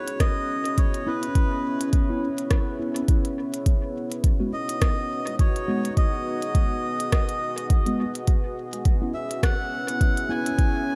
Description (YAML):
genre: ambient dub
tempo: 104 BPM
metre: 4/4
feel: swing 57% on 16ths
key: C# minor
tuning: A4 = 440 Hz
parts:
  - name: melodica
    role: melody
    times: 0.0-11.0 s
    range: B4 to G#5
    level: -32 LUFS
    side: equal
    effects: dub echo
  - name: deep dark ambient pad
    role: sustained chords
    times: 0.0-11.0 s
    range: B3 to D#5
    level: -32 LUFS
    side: equal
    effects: chorus, built-in reverb
  - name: organic electronic drum kit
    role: drums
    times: 0.1-10.7 s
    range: hi-hat, rim click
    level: -35 LUFS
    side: equal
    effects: overdrive, dub echo
  - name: electronic kick drum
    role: drums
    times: 0.2-10.7 s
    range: none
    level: -23 LUFS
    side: equal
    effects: overdrive
  - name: mellow tine electric piano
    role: stabs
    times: 1.1-10.5 s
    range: G#3 to F#4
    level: -34 LUFS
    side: equal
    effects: dub echo
room: light reverb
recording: none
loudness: -24 LUFS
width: mono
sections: 0.0-11.0 A section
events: none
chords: 0.0 C#m7; 3.7 G#m7; 8.3 C#m7